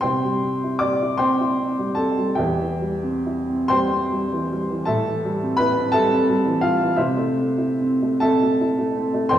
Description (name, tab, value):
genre	classical, romantic nocturne for solo piano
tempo	43-59 BPM (dotted quarters)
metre	12/8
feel	rubato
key	C major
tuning	A4 = 440 Hz
part	clear upright piano	solo	0.0-9.4 s	E2 to D6	-18 LUFS	equal	none
room	wet recital hall reverb, RT60 1.4 s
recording	heard from further back in the room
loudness	-19 LUFS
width	side -11 dB against mid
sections	0.0-9.4 A section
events	none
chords	0.0 C; 2.4 C/E; 4.9 Am7; 7.0 Am/C